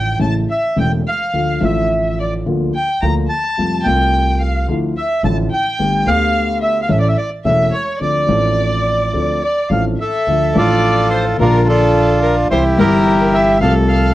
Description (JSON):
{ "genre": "tango", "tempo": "108 BPM", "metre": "4/4", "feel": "rubato", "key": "D minor", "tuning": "A4 = 440 Hz", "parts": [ { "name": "bandoneon", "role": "melody", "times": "0.0-14.1 s", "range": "D4 to Bb5", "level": "-17 LUFS", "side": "right 1 dB", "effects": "slapback echo" }, { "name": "rich violin", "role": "second line", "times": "0.0-14.1 s", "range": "A4 to Bb5", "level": "-21 LUFS", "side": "left 1 dB", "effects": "none" }, { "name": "dark concert grand piano", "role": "accompaniment", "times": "0.0-14.1 s", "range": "E1 to A4", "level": "-18 LUFS", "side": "left 1 dB", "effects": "none" }, { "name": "upright bass", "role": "bass", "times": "0.0-14.1 s", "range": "E1 to F2", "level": "-20 LUFS", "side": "right 1 dB", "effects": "tube saturation" } ], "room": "light reverb", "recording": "worn, warbling old tape, cassette tape, warbly pitch drift", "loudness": "-13 LUFS", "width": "side -15 dB against mid", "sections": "0.0-10.3 A section; 10.3-14.1 A section", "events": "none", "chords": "0.2 A; 1.3 Dm; 2.5 Bb/D; 3.6 Fadd9; 4.7 Dmadd9; 5.8 Gadd9; 6.9 A; 8.0 Dm7; 10.3 Dm; 11.4 Bb; 12.5 C; 13.6 Fadd9/C", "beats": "0.20 0.77 | 1.33 1.90 2.46 3.02 | 3.58 4.13 4.68 5.24 | 5.79 6.34 6.89 7.45 | 8.01 8.57 9.13 9.70 | 10.27 10.84 11.40 11.95 | 12.51 13.06 13.61" }